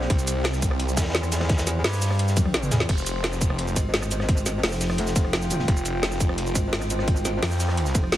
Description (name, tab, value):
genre	dark technical drum and bass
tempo	172 BPM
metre	4/4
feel	straight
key	F minor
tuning	A4 = 440 Hz
part	metallic inharmonic drone	sustained chords	0.0-8.2 s	C4 to G5	-32 LUFS	equal	chorus, built-in reverb, sidechain pumping
part	metallic wobble bass	bass	0.0-8.2 s	F1 to G2	-25 LUFS	equal	chorus
part	crunchy breakbeat drum kit	drums	0.0-8.2 s	hi-hat, ride cymbal, snare drum	-35 LUFS	equal	high-pass filter on cymbals, high-pass filter on hats, high-pass filter on snare, high-pass filter on room
part	snarling distorted saw bass	bass	0.1-7.9 s	F1 to F2	-26 LUFS	equal	distortion, sidechain pumping
part	drum and bass drum kit	drums	0.1-8.2 s	crash cymbal, hi-hat, rim click, shaker, snare drum, toms	-27 LUFS	equal	none
part	electronic kick drum	drums	0.1-8.0 s	none	-23 LUFS	equal	none
room	light reverb, digital ambience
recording	heavily compressed radio sound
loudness	-21 LUFS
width	side -13 dB against mid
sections	0.0-8.2 A section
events	drum fill 2.4-2.9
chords	0.0 C; 2.9 Fm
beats	| 0.10 0.45 0.80 1.15 | 1.50 1.84 2.19 2.54 | 2.89 3.24 3.59 3.94 | 4.29 4.63 4.98 5.33 | 5.68 6.03 6.38 6.73 | 7.08 7.42 7.77 8.12